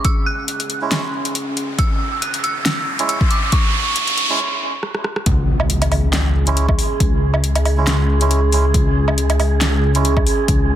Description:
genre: deep dubstep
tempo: 138 BPM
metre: 4/4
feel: swing 54% on 16ths, half-time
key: C# minor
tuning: A4 = 440 Hz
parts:
  - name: dark detuned synth bell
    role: melody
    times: 0.0-4.4 s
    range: C#6 to F#6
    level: -24 LUFS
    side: right 2 dB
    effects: chorus, tremolo, dub echo
  - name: dark analog pad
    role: sustained chords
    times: 0.0-10.8 s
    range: C#4 to G#4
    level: -26 LUFS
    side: equal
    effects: chorus
  - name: deep house drum kit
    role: drums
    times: 0.0-10.6 s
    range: handclaps, hi-hat, rim click, snare drum, woodblock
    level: -21 LUFS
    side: equal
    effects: overdrive
  - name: electronic kick drum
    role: drums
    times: 0.0-10.6 s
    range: none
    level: -17 LUFS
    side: equal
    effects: overdrive
  - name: riser and impact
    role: sound effects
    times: 1.1-7.0 s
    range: none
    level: -23 LUFS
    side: equal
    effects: none
  - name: melodica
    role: stabs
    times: 0.8-10.1 s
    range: G#3 to E4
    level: -25 LUFS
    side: right 5 dB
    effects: low-pass filter, dub echo
  - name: dark detuned saw bass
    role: bass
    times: 5.3-10.8 s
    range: C#2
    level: -17 LUFS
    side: equal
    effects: none
  - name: wind-like tuned noise texture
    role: texture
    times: 6.4-10.8 s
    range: G#4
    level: -27 LUFS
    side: right 9 dB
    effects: built-in reverb
room: moderate spring reverb, RT60 1.7 s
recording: dense, heavily limited modern master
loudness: -15 LUFS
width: side -11 dB against mid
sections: 0.0-5.3 A section; 5.3-10.8 B section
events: build-up 0.0-5.3; filter sweep on analog synth pad 0.0-5.3; riser 1.1-4.4; break 4.4-5.3; drum fill 4.8-5.3; drop 5.3-10.8; impact 5.3-7.0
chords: 0.0 C#m

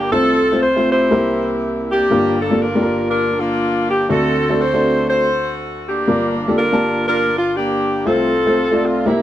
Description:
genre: gospel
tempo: 121 BPM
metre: 4/4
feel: swing 60% on 8ths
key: F major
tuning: A4 = 441 Hz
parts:
  - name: warm saxophone section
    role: melody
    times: 0.0-9.2 s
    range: G3 to C5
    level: -17 LUFS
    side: equal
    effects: none
  - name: warm upright piano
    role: accompaniment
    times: 0.0-9.2 s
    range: G1 to A5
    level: -18 LUFS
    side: left 1 dB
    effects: none
room: studio reverb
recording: dry, close 1970s-style studio recording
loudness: -14 LUFS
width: side -12 dB against mid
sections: 0.0-9.2 A section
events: none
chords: 0.1 F/C; 1.1 C7; 2.1 Gm7; 4.1 D7; 6.1 Gm7; 8.1 F/C

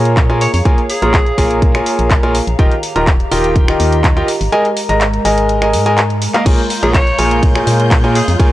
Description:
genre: piano house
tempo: 124 BPM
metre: 4/4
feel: straight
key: Bb dorian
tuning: A4 = 439 Hz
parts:
  - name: clear concert grand piano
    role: riff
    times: 0.0-8.5 s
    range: Eb3 to Bb5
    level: -15 LUFS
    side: equal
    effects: vintage 12-bit sampler grit, sidechain pumping
  - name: organ-like FM bass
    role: bass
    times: 0.0-8.4 s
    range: Eb1 to Bb2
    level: -17 LUFS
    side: equal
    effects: sidechain pumping
  - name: warbly tape-like pad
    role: texture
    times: 0.0-8.5 s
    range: Ab3 to Bb5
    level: -23 LUFS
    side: left 1 dB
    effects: chorus, built-in reverb, sidechain pumping
  - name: house drum kit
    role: drums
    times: 0.1-8.5 s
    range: crash cymbal, finger snaps, handclaps, hi-hat, ride cymbal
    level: -20 LUFS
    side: equal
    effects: none
  - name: electronic kick drum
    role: drums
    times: 0.2-8.5 s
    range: none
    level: -12 LUFS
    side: equal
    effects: none
  - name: growling alto saxophone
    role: melody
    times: 0.4-1.6, 6.8-8.3 s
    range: Ab4 to Db5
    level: -20 LUFS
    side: equal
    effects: tape echo
  - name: warm symphonic violin section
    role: sustained chords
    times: 6.5-8.5 s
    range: F4 to G6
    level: -24 LUFS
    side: equal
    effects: sidechain pumping
room: studio reverb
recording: dry, gritty hardware recording, transformer saturation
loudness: -10 LUFS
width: side -15 dB against mid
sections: 0.0-8.5 A section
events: kick drops out 4.5-6.5; drum fill 6.0-6.5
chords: 0.0 Bbm7; 2.6 Ebadd9; 4.3 Absus2; 6.5 Bbm7

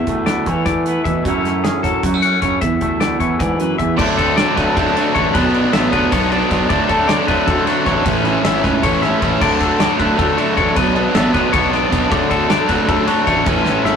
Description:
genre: math rock and midwest emo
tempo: 310 BPM (eighths)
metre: 7/8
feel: straight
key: D major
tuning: A4 = 440 Hz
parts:
  - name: twangy electric guitar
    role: accompaniment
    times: 0.0-4.0 s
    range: E2 to E4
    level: -19 LUFS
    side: right 2 dB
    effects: none
  - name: twangy electric guitar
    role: arpeggios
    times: 0.0-14.0 s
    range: F#4 to F#5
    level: -21 LUFS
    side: left 5 dB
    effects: none
  - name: fuzz picked electric bass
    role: bass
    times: 0.0-14.0 s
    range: G#1 to E3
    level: -22 LUFS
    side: equal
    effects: overdrive
  - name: loose indie drum kit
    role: drums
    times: 0.1-13.9 s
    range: crash cymbal, hi-hat, kick drum, ride cymbal, snare drum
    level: -21 LUFS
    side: equal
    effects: none
  - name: cranked stack guitar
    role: riff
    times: 4.0-14.0 s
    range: A2 to E4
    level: -15 LUFS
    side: equal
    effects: overdrive
room: moderate stone room reverb, RT60 1.3 s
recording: rough rehearsal-room recording, tube saturation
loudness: -13 LUFS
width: side -7 dB against mid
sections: 0.0-4.0 A section; 4.0-14.0 B section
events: drum fill 13.7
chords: 0.0 E7sus4; 1.2 F#m7; 2.6 E7sus4; 4.0 Dmaj7; 5.3 Bmadd9; 6.7 Dmaj7; 8.1 A; 9.4 Dmaj7; 10.8 Bmadd9; 12.1 Dmaj7

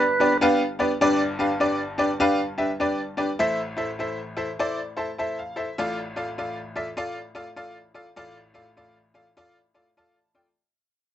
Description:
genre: soul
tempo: 100 BPM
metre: 4/4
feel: swing 63% on 8ths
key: unclear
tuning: A4 = 440 Hz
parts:
  - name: bright upright piano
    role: accompaniment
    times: 0.0-10.5 s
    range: G1 to C6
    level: -23 LUFS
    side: left 1 dB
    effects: none
room: light reverb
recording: nothing above 8.0 kHz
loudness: -22 LUFS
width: side -11 dB against mid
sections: 0.0-1.0 A section; 1.0-10.6 B section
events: fade-out 1.0-10.6; upright piano fill 4.6-5.8, 9.7-10.6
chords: 0.0 G; 3.4 Am; 5.8 Dm/A

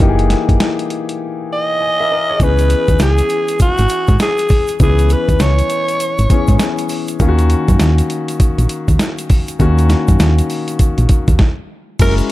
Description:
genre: R&B, new jack swing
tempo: 100 BPM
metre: 4/4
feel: swing 62% on 16ths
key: unclear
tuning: A4 = 440 Hz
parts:
  - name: warm concert grand piano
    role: accompaniment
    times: 0.0-12.3 s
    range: D#3 to G#5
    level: -20 LUFS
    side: left 4 dB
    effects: none
  - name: solid FM bass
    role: bass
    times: 0.0-12.2 s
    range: F#1 to G#2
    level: -13 LUFS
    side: equal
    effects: none
  - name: dusty soul sampler-style drum kit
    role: drums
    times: 0.0-12.3 s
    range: crash cymbal, hi-hat, kick drum, snare drum, tambourine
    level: -15 LUFS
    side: equal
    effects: none
  - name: raspy alto saxophone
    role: melody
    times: 1.5-6.6, 12.0-12.1 s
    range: F#4 to D#5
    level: -16 LUFS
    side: equal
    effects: none
  - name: tube shaker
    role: percussion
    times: 2.4-12.3 s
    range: none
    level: -34 LUFS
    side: right 11 dB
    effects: none
room: small room reverb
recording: dark, warm production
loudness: -12 LUFS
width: side -16 dB against mid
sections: 0.0-2.4 A section; 2.4-12.0 B section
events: break 1.2-2.4; stop 11.4-12.0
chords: 0.0 F#13; 2.4 C#m7; 7.2 D#m7

